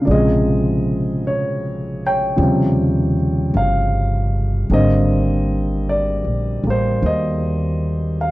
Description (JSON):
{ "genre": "jazz ballad", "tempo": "52 BPM", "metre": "4/4", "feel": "swing 68% on 8ths", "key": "unclear", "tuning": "A4 = 440 Hz", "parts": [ { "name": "warm grand piano", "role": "accompaniment", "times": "0.0-8.3 s", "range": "C3 to G5", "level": "-18 LUFS", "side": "equal", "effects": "none" }, { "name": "upright bass", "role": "bass", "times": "0.1-8.3 s", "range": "G1 to Eb2", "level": "-20 LUFS", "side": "equal", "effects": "none" } ], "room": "little or no reverb", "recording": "dark, warm production", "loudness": "-16 LUFS", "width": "side -18 dB against mid", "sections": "0.0-8.3 A section", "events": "none", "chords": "0.1 Bbm7; 2.4 Eb13; 4.7 Abmaj9#11" }